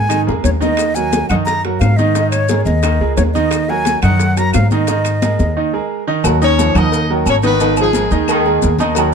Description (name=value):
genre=latin, salsa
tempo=176 BPM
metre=4/4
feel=straight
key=Eb minor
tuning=A4 = 440 Hz
part: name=breathy bright concert flute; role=melody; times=0.0-5.9 s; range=Db5 to Bb5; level=-19 LUFS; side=equal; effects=plate reverb
part: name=bright baby grand piano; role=accompaniment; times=0.0-9.1 s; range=Eb3 to Gb5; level=-18 LUFS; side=right 6 dB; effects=none
part: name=upright bass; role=bass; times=0.0-9.1 s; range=Ab1 to Ab2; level=-17 LUFS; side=left 1 dB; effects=none
part: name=bongos and cowbell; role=percussion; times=0.1-9.1 s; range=none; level=-26 LUFS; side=left 9 dB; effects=none
part: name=claves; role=percussion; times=0.1-9.1 s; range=none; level=-30 LUFS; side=left 8 dB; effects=none
part: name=congas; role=percussion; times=0.1-9.1 s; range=none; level=-23 LUFS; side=left 1 dB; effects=none
part: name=maracas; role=percussion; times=0.1-9.1 s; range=none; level=-29 LUFS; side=left 10 dB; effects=none
part: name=timbales and agogo bells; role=percussion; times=0.1-9.1 s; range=none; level=-25 LUFS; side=right 7 dB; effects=none
part: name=mellow trombone section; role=second line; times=6.2-9.1 s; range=Eb3 to F3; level=-21 LUFS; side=left 1 dB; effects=none
part: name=clear horn section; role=melody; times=6.4-8.8 s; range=Ab3 to Eb5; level=-17 LUFS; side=left 5 dB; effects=plate reverb
room=light reverb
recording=dark, warm production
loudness=-12 LUFS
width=side -6 dB against mid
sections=0.0-6.2 A section; 6.2-9.1 B section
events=drum fill 0.1-0.8; break 5.6-6.2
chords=0.0 Absus2; 0.8 Ebm; 2.1 Absus2; 3.5 Ebm; 4.9 Absus2; 6.2 Ebm7; 7.6 Abmadd9